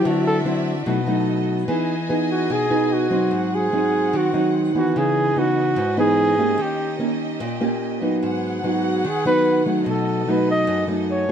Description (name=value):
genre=bossa nova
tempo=147 BPM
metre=4/4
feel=straight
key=E major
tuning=A4 = 441 Hz
part: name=mellow flugelhorn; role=melody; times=0.0-11.3 s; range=F#4 to D#5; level=-21 LUFS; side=right 1 dB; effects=none
part: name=nylon-string guitar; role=accompaniment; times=0.0-11.3 s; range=F#2 to G#4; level=-20 LUFS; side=equal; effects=none
part: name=warm studio violin section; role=sustained chords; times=0.0-11.3 s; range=B3 to G#5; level=-31 LUFS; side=equal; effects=none
room=moderate studio reverb, RT60 0.6 s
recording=dark, warm production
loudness=-18 LUFS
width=side -8 dB against mid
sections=0.0-1.7 A section; 1.7-11.3 A section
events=flugelhorn solo 0.0-1.7, 1.7-11.3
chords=0.0 D9; 0.9 B7; 1.7 Emaj7; 3.3 G#7; 5.0 C#m9; 6.6 D#7; 8.2 G#m7; 9.9 B7